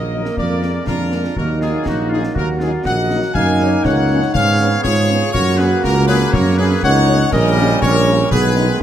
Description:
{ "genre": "military-style march for wind band", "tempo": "121 BPM", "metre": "2/4", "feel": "straight", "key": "unclear", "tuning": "A4 = 441 Hz", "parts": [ { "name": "bright trumpet section", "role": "melody", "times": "0.0-8.8 s", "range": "Gb4 to Ab5", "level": "-20 LUFS", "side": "left 2 dB", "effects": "none" }, { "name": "clear woodwind section", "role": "second line", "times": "0.0-8.8 s", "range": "Eb4 to F5", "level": "-24 LUFS", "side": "left 2 dB", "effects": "none" }, { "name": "warm euphonium", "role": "second line", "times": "0.0-8.8 s", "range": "Bb3 to Gb4", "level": "-21 LUFS", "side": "right 1 dB", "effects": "none" }, { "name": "clear trombone section", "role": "sustained chords", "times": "0.0-8.8 s", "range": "C#3 to Cb4", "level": "-26 LUFS", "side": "right 3 dB", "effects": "none" }, { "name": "mellow tuba", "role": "bass", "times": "0.0-8.7 s", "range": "A#1 to Ab2", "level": "-17 LUFS", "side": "right 2 dB", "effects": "none" }, { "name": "mellow French horn section", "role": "accompaniment", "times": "0.1-8.7 s", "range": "Gb3 to Eb4", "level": "-27 LUFS", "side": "left 4 dB", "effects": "none" }, { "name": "concert snare drum, concert bass drum and clash cymbals", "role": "drums", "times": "0.3-8.7 s", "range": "none", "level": "-25 LUFS", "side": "left 2 dB", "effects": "none" } ], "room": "moderate scoring stage reverb, RT60 2.1 s", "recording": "none", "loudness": "-13 LUFS", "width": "side -10 dB against mid", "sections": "0.0-8.8 A section", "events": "none", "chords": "0.4 Bb7/F; 1.4 Ebm; 3.4 Gb; 4.3 Db7/Ab; 5.3 Gb; 7.3 D#7/A#; 8.3 G#m/B", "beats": "| 0.37 0.87 | 1.37 1.86 | 2.36 2.86 | 3.35 3.85 | 4.35 4.84 | 5.34 5.84 | 6.33 6.83 | 7.33 7.83 | 8.32 8.82" }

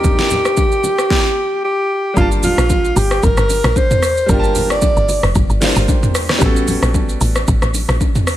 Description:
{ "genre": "amapiano", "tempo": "113 BPM", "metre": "4/4", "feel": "swing 55% on 16ths", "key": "G minor", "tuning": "A4 = 441 Hz", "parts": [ { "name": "breathy alto saxophone", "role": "melody", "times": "0.0-5.2 s", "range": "F4 to D5", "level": "-17 LUFS", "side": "equal", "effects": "ping-pong delay" }, { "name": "clear grand piano", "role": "accompaniment", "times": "0.0-8.4 s", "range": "G3 to A5", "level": "-22 LUFS", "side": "equal", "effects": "none" }, { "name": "deep house drum kit", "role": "drums", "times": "0.0-8.4 s", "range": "hi-hat, kick drum, rim click, shaker, snare drum, toms", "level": "-16 LUFS", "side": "equal", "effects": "none" }, { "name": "congas and bongos", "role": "percussion", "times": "0.0-8.1 s", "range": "none", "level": "-24 LUFS", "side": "left 2 dB", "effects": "none" }, { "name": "woody log drum bass", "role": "bass", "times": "2.2-8.0 s", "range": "F1 to Bb1", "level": "-17 LUFS", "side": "equal", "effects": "none" } ], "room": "digital ambience", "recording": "none", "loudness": "-12 LUFS", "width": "side -13 dB against mid", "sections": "0.0-2.2 A section; 2.2-8.4 B section", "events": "stop 1.1-2.2; drop 2.2-8.4", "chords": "0.0 Cm9; 2.2 Gm9; 6.4 A13", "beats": "| 0.04 0.57 1.11 1.64 | 2.17 2.70 3.23 3.76 | 4.29 4.82 5.35 5.88 | 6.42 6.95 7.48 8.01" }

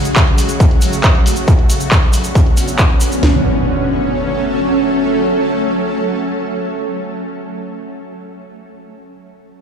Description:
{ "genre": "uplifting trance", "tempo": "137 BPM", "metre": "4/4", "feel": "straight", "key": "F# minor", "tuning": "A4 = 440 Hz", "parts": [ { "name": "shimmering ambient pad", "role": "sustained chords", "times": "0.0-7.2 s", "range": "C#3 to A4", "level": "-17 LUFS", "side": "right 1 dB", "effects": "chorus, built-in reverb, sidechain pumping" }, { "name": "tube shaker", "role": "percussion", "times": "0.0-3.2 s", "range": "none", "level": "-26 LUFS", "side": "right 1 dB", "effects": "none" }, { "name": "punchy analog drum machine", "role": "drums", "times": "0.1-3.2 s", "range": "handclaps, hi-hat", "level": "-19 LUFS", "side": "equal", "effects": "low-pass filter on hats, low-pass filter on cymbals, low-pass filter on snare" }, { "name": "techno drum kit", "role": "drums", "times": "0.2-3.3 s", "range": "kick drum, snare drum, toms", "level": "-12 LUFS", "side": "equal", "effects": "distortion, overdrive" }, { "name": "impact", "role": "sound effects", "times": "3.2-7.3 s", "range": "none", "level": "-20 LUFS", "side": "equal", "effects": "none" } ], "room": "light reverb, digital ambience", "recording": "played on a big sound system in a bare room, stone room reverb", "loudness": "-12 LUFS", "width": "side -7 dB against mid", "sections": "0.0-3.2 A section; 3.2-6.7 B section", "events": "none", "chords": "0.0 F#m; 1.5 Bmadd9; 3.2 F#m", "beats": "0.16 0.60 1.04 | 1.48 1.92 2.35 2.79 | 3.23 3.67 4.11 4.54 | 4.98 5.42 5.86 6.29" }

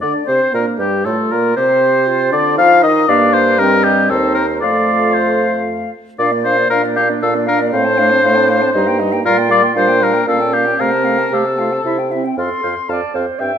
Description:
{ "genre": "quick classical-period movement for wind quintet", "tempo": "117 BPM", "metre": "3/4", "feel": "straight", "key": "Bb major, F major from 9.3 s", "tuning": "A4 = 441 Hz", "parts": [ { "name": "silver concert flute", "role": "melody", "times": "0.0-13.6 s", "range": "G4 to C6", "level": "-20 LUFS", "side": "left 5 dB", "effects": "none" }, { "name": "warm oboe", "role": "second line", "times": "0.0-13.5 s", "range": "G4 to G5", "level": "-15 LUFS", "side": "left 3 dB", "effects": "none" }, { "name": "warm French horn", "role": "accompaniment", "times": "0.0-13.5 s", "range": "G3 to F4", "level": "-21 LUFS", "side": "equal", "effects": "none" }, { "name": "mellow bassoon", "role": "bass", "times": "0.0-13.5 s", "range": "Eb2 to F3", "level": "-18 LUFS", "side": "right 3 dB", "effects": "none" }, { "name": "warm clarinet", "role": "accompaniment", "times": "0.5-13.6 s", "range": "C4 to E5", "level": "-22 LUFS", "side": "right 8 dB", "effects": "none" } ], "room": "moderate recital hall reverb, RT60 1.4 s", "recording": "minimal, uncompressed stereo recording", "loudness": "-12 LUFS", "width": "side -8 dB against mid", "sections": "0.0-12.4 A section; 12.4-13.6 B section", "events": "none", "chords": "0.0 Bb; 1.6 F5/C; 2.6 Ebsus2; 3.1 Cm7/G; 4.6 F; 6.2 Bb; 7.7 F/A; 8.8 Eb/G; 9.3 Gm7/Bb; 10.3 Gm7b5/Bb; 10.8 F/C; 11.9 C; 12.4 F", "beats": "| 0.03 0.54 1.05 | 1.56 2.07 2.58 | 3.08 3.59 4.10 | 4.62 5.14 5.66 | 6.19 6.71 7.22 | 7.74 8.24 8.75 | 9.26 9.77 10.28 | 10.80 11.33 11.86 | 12.38 12.89 13.40" }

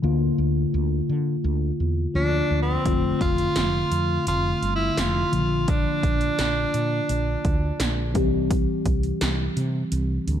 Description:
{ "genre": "1980s-style pop", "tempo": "85 BPM", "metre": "4/4", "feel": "straight", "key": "unclear", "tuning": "A4 = 439 Hz", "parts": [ { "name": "tine electric piano", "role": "accompaniment", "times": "0.0-10.4 s", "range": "Db3 to G4", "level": "-26 LUFS", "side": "left 2 dB", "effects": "phaser" }, { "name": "woody fretless electric bass", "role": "bass", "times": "0.0-10.4 s", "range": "F1 to D3", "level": "-26 LUFS", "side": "equal", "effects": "none" }, { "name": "clear tenor saxophone", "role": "melody", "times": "2.2-8.2 s", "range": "C4 to F4", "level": "-26 LUFS", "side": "right 2 dB", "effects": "none" }, { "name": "80s electronic pad drums", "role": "drums", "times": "2.9-10.4 s", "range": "hi-hat, kick drum, snare drum", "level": "-26 LUFS", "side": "right 1 dB", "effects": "none" } ], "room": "light reverb, digital ambience", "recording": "dark, warm production", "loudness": "-21 LUFS", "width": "side -10 dB against mid", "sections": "0.0-10.4 A section", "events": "none", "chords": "0.0 Bb/D; 2.9 F6; 5.3 Bb; 8.2 C", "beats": "| 0.04 0.74 1.45 2.15 | 2.86 3.56 4.27 4.98 | 5.68 6.39 7.09 7.80 | 8.51 9.21 9.92" }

